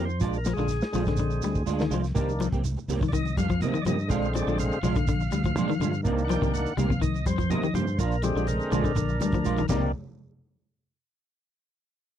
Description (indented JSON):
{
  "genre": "afrobeat",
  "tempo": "123 BPM",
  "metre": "4/4",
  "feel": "straight",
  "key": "unclear",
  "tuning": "A4 = 442 Hz",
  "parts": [
    { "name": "overdriven tonewheel organ", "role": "accompaniment", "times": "0.0-9.9 s", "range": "D3 to G5", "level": "-31 LUFS", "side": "left 1 dB", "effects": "slow rotary speaker" },
    { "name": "electric guitar at the edge of break-up", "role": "arpeggios", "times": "0.0-9.8 s", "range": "C3 to G3", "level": "-30 LUFS", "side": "left 7 dB", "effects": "none" },
    { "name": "semi-hollow electric guitar", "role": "stabs", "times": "0.0-9.9 s", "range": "Eb3 to G4", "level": "-30 LUFS", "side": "right 6 dB", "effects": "ensemble chorus" },
    { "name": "fingered electric bass", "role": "bass", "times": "0.0-9.9 s", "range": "Bb1 to C3", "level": "-29 LUFS", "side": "equal", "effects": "none" },
    { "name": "shekere", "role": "percussion", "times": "0.1-9.8 s", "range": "none", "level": "-39 LUFS", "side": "right 6 dB", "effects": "none" },
    { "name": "crunchy breakbeat drum kit", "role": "drums", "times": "0.2-9.8 s", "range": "crash cymbal, hi-hat, kick drum, snare drum", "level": "-30 LUFS", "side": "equal", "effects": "none" },
    { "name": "congas", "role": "percussion", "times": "2.3-9.8 s", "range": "none", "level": "-34 LUFS", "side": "right 1 dB", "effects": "none" }
  ],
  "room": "little or no reverb",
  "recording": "dry, close 1970s-style studio recording",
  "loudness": "-24 LUFS",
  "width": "side -10 dB against mid",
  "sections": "0.0-9.9 A section; 9.9-11.9 B section",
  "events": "tonewheel organ solo 0.0-9.9",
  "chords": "0.2 Bb7; 2.2 Cm7; 4.1 Bb7; 6.0 Cm7; 8.0 Bb7; 9.7 Cm7; 9.9 N.C."
}